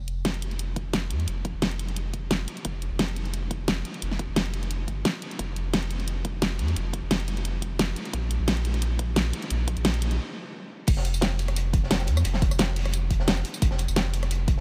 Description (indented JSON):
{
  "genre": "liquid drum and bass",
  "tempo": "175 BPM",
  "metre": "4/4",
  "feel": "swing 53% on 16ths",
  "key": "unclear",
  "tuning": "A4 = 441 Hz",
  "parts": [
    { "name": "warm sub bass", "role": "bass", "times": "0.0-14.6 s", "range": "F1 to F2", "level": "-30 LUFS", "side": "equal", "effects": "none" },
    { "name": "pop drum kit", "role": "drums", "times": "0.1-14.6 s", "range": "crash cymbal, hi-hat, rim click, snare drum, tambourine", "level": "-31 LUFS", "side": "equal", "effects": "none" },
    { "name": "electronic kick drum", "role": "drums", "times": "0.8-14.6 s", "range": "none", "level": "-28 LUFS", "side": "equal", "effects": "high-pass filter on kick" },
    { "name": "crunchy breakbeat drum kit", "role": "drums", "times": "10.9-14.6 s", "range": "hi-hat, snare drum", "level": "-38 LUFS", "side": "equal", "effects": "high-pass filter on hats, low-pass filter on hats, high-pass filter on snare, low-pass filter on snare, high-pass filter on room, low-pass filter on room" }
  ],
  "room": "moderate huge ambient reverb, RT60 4.3 s",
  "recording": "dreamy mix soaked in reverb",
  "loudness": "-27 LUFS",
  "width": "mono",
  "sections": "0.0-10.9 A section; 10.9-14.6 B section",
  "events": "build-up 0.0-10.9; stop 10.2-10.9; drop 10.9-14.6",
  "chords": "none"
}